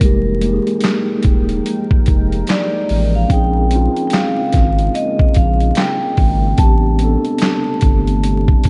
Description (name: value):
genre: lo-fi hip hop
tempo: 73 BPM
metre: 4/4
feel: swing 62% on 16ths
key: unclear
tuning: A4 = 440 Hz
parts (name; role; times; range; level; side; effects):
- vibraphone with medium hard mallets; melody; 0.0-8.7 s; Bb4 to A5; -24 LUFS; equal; low-pass filter, tape echo
- mellow tine electric piano; accompaniment; 0.0-8.7 s; Ab3 to A4; -22 LUFS; equal; cassette tape, low-pass filter
- deep dark ambient pad; sustained chords; 0.0-8.7 s; C3 to G5; -28 LUFS; equal; chorus, built-in reverb, low-pass filter
- saturated sub bass; bass; 0.0-8.7 s; Eb1 to Bb1; -19 LUFS; equal; none
- boom bap sampler-style drum kit; drums; 0.0-8.7 s; handclaps, hi-hat, kick drum, snare drum; -18 LUFS; equal; none
- tambourine; percussion; 0.8-7.6 s; none; barely audible; none; none
room: light reverb, digital ambience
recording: vinyl crackle, nothing above 10.8 kHz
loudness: -15 LUFS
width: mono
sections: 0.0-8.7 A section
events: none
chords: 0.0 Fm11; 3.3 Bbm11; 6.6 Am11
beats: | 0.01 0.83 1.65 2.48 | 3.30 4.12 4.94 5.76 | 6.59 7.41 8.23